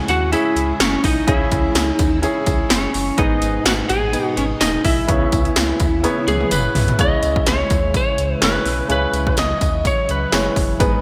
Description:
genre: 1980s-style pop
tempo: 126 BPM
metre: 4/4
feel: swing 55% on 16ths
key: C# minor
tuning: A4 = 440 Hz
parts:
  - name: warm grand piano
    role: accompaniment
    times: 0.0-11.0 s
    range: G#2 to C#5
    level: -25 LUFS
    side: equal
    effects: none
  - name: string machine, full ensemble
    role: sustained chords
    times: 0.0-11.0 s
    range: B2 to E4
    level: -32 LUFS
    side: equal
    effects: ensemble chorus
  - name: lightly driven lead guitar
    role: melody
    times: 0.1-10.5 s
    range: C#4 to D#5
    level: -23 LUFS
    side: equal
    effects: delay
  - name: twelve-string electric guitar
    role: second line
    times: 0.1-6.5 s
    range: C#5 to G#5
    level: -30 LUFS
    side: equal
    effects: lush chorus, delay
  - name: sub bass with octave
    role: bass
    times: 0.1-11.0 s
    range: D#1 to D#2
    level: -27 LUFS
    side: equal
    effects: none
  - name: 80s electronic pad drums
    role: drums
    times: 0.1-10.9 s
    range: hi-hat, kick drum, snare drum, tambourine, toms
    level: -22 LUFS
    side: equal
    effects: gated reverb on snare and toms, gated reverb
  - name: tambourine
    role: percussion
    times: 0.1-10.9 s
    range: none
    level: -36 LUFS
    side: equal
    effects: none
room: moderate lush hall reverb, RT60 2.1 s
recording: bright 1980s-style digital production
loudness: -18 LUFS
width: mono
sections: 0.0-7.0 A section; 7.0-11.0 B section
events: drum fill 6.0-7.0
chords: 0.0 C#m; 3.2 G#m; 5.1 C#m7

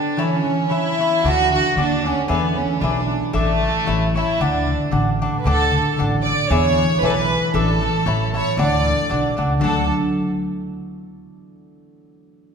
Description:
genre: mexican folk, mariachi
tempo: 114 BPM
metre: 2/4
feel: swing 53% on 8ths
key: D major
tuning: A4 = 440 Hz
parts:
  - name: rich chamber violin section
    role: melody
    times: 0.0-9.9 s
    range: A3 to D5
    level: -20 LUFS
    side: right 2 dB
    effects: none
  - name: concert harp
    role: arpeggios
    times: 0.0-11.4 s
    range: D3 to D4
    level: -23 LUFS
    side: left 1 dB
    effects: none
  - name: cavaquinho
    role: accompaniment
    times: 0.2-9.8 s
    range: D4 to B5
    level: -25 LUFS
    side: left 1 dB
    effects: none
  - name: upright bass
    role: bass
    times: 1.2-9.9 s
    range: A1 to E2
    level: -23 LUFS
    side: equal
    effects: none
room: wet recital hall reverb, RT60 1.9 s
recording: recorded in a church or concert hall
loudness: -17 LUFS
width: side -6 dB against mid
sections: 0.0-5.5 A section; 5.5-9.6 B section; 9.6-10.7 C section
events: none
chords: 0.2 Aadd9; 1.2 D; 2.3 E7; 3.3 Asus4; 3.9 Aadd9; 4.4 D; 6.5 E7; 7.5 Asus4; 8.1 Aadd9; 8.6 D

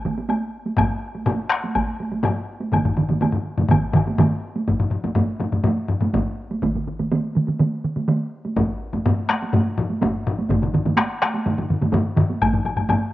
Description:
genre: japanese traditional, taiko drum ensemble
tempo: 124 BPM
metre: 4/4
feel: straight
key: none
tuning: none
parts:
  - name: taiko ensemble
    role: percussion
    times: 0.1-13.0 s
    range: none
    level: -24 LUFS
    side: right 3 dB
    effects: none
  - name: taiko ensemble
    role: percussion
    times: 0.1-12.3 s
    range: none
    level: -22 LUFS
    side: right 2 dB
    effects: none
  - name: woodblock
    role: percussion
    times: 0.3-4.3, 12.4-13.0 s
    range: none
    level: -27 LUFS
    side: left 4 dB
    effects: none
  - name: taiko ensemble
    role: percussion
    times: 0.8-13.0 s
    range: none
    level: -22 LUFS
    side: left 2 dB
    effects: none
  - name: taiko ensemble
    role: percussion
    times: 0.8-12.5 s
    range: none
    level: -32 LUFS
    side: left 1 dB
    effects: none
room: moderate spring reverb, RT60 1.4 s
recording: home recording on cassette, nothing above 7.8 kHz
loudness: -19 LUFS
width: side -15 dB against mid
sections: 0.0-4.7 A section; 4.7-13.1 B section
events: none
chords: none

